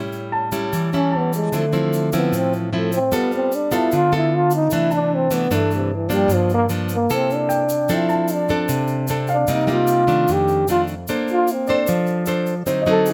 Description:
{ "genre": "bossa nova", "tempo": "151 BPM", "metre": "4/4", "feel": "straight", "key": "C major, F major from 7.9 s", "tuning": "A4 = 443 Hz", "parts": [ { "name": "nylon-string guitar", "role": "accompaniment", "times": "0.0-13.1 s", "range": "F2 to C5", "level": "-23 LUFS", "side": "equal", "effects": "none" }, { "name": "egg shaker", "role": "percussion", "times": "0.1-13.1 s", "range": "none", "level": "-37 LUFS", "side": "equal", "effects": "none" }, { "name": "warm grand piano", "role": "accompaniment", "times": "0.3-13.1 s", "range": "C5 to A5", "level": "-29 LUFS", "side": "equal", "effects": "none" }, { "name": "breathy trombone", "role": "melody", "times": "0.9-13.1 s", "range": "C3 to A4", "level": "-22 LUFS", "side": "equal", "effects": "none" } ], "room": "light reverb", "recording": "close, detailed microphones", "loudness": "-19 LUFS", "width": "mono", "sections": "0.0-7.9 A section; 7.9-13.1 A section", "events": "trombone solo 0.0-13.1", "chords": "0.0 A7; 1.5 Dm9; 3.1 G9; 4.7 C69; 6.3 Gm7; 7.1 C13; 7.9 F6; 9.5 Cm7; 10.3 F13; 11.1 Bbmaj9" }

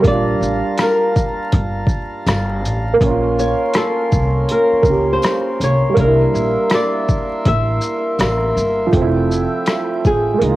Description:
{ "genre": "lo-fi hip hop", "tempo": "81 BPM", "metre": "4/4", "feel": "swing 64% on 16ths", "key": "F major", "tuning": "A4 = 439 Hz", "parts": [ { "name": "flamenco guitar", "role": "melody", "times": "0.0-10.6 s", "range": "Ab4 to E5", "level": "-20 LUFS", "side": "left 1 dB", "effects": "low-pass filter, cassette tape" }, { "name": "dark upright piano", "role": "accompaniment", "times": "0.0-10.6 s", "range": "F3 to G4", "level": "-19 LUFS", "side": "right 3 dB", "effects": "cassette tape, low-pass filter" }, { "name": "hand-pumped harmonium", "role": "sustained chords", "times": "0.0-10.6 s", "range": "Bb3 to C6", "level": "-22 LUFS", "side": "equal", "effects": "low-pass filter" }, { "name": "upright bass", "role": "bass", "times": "0.0-10.6 s", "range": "F1 to Db2", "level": "-20 LUFS", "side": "equal", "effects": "none" }, { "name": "boom bap sampler-style drum kit", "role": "drums", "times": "0.0-10.6 s", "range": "hi-hat, kick drum, rim click, shaker", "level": "-19 LUFS", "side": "equal", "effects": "overdrive" }, { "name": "tambourine", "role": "percussion", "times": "0.8-9.9 s", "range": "none", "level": "-40 LUFS", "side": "left 10 dB", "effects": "none" } ], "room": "moderate spring reverb, RT60 2.6 s", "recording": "home recording on cassette, vinyl crackle", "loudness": "-14 LUFS", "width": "side -16 dB against mid", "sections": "0.0-8.9 A section; 8.9-10.6 B section", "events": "none", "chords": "0.0 Gm9; 3.0 Bbmadd9; 6.0 C7; 8.9 Fmaj9" }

